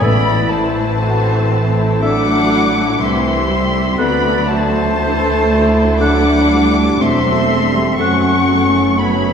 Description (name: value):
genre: cinematic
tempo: 61 BPM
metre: 4/4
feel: rubato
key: A dorian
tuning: A4 = 439 Hz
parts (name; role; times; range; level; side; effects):
- muted chamber violin section; melody; 0.0-9.3 s; A5 to D6; -20 LUFS; left 4 dB; none
- muted symphonic violin section; second line; 0.0-9.3 s; B3 to B4; -25 LUFS; left 3 dB; none
- small flute group; second line; 0.0-9.3 s; C5 to F#5; -22 LUFS; left 1 dB; none
- warm clarinet; second line; 0.0-8.4 s; A4; -27 LUFS; left 1 dB; none
- warm oboe; second line; 0.0-8.4 s; E5 to F#5; -26 LUFS; right 2 dB; none
- muted symphonic viola section; accompaniment; 0.0-9.3 s; D3 to E4; -20 LUFS; right 2 dB; none
- mellow French horn section; sustained chords; 0.0-9.3 s; A3 to D4; -17 LUFS; left 1 dB; none
- muted symphonic cello section; bass; 0.0-9.3 s; C2 to A2; -22 LUFS; right 2 dB; none
- muted symphonic double bass section; bass; 0.0-9.3 s; E1 to D2; -21 LUFS; right 2 dB; none
- timpani; percussion; 0.0-1.5 s; A2; -21 LUFS; equal; none
room: wet scoring stage reverb, RT60 2.0 s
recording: none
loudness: -12 LUFS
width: side -7 dB against mid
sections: 0.0-9.3 A section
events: none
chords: 0.0 Am; 4.0 D; 8.0 F#m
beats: | 0.01 1.00 2.03 3.01 | 3.99 4.97 6.01 7.01 | 8.00 8.98